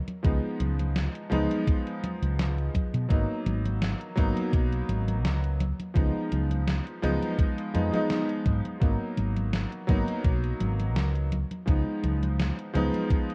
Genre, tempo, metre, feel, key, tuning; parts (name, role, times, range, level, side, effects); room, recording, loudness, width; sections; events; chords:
vaporwave; 84 BPM; 4/4; swing 54% on 16ths; A4 = 440 Hz
gated 80s digital drum machine; drums; 0.1-13.3 s; congas, hi-hat, snare drum; -36 LUFS; equal; gated reverb, gated reverb snare
clear electric grand piano; accompaniment; 0.2-13.3 s; E#3 to D#4; -33 LUFS; equal; lush chorus, analog delay
woody fretless electric bass; bass; 0.2-12.9 s; G#1 to B2; -30 LUFS; equal; lush chorus
electronic kick drum; drums; 0.2-13.3 s; -27 LUFS; equal
light reverb, digital ambience; dark, warm production, cassette tape; -27 LUFS; mono
0.0-13.3 A section
0.0 C#7; 3.1 G#m7; 5.6 C#7; 8.8 G#m7; 11.3 C#7